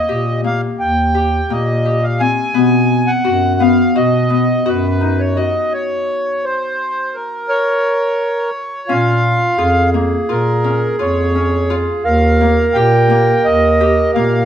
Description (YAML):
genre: contemporary instrumental, chamber music in an uneven meter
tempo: 171 BPM (eighths)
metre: 9/8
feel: straight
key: unclear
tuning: A4 = 443 Hz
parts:
  - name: accordion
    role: melody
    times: 0.0-14.5 s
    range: Bb4 to Ab5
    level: -17 LUFS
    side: equal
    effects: none
  - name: Celtic harp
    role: arpeggios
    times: 0.0-14.5 s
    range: Bb3 to G4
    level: -18 LUFS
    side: left 4 dB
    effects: none
  - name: dark bass clarinet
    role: bass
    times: 0.1-14.5 s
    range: Eb2 to B2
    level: -17 LUFS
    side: equal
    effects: none
  - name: clear clarinet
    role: second line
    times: 8.9-14.5 s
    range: F4 to Bb4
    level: -17 LUFS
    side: right 3 dB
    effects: none
room: moderate recital hall reverb, RT60 1.6 s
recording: none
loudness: -13 LUFS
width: side -9 dB against mid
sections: 0.0-8.9 A section; 8.9-14.5 B section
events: stop 5.7-8.9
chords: 0.0 Ebadd9; 2.6 B; 5.7 N.C.; 8.9 Bbm7; 12.0 Ebadd9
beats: 0.10 0.45 0.80 1.15 1.50 1.86 2.21 | 2.56 2.91 3.27 3.62 3.97 4.32 4.67 5.02 5.38 | 5.73 6.08 6.43 6.78 7.13 7.48 7.83 8.19 8.54 | 8.89 9.24 9.59 9.94 10.29 10.64 10.99 11.35 11.70 | 12.05 12.40 12.75 13.10 13.45 13.80 14.15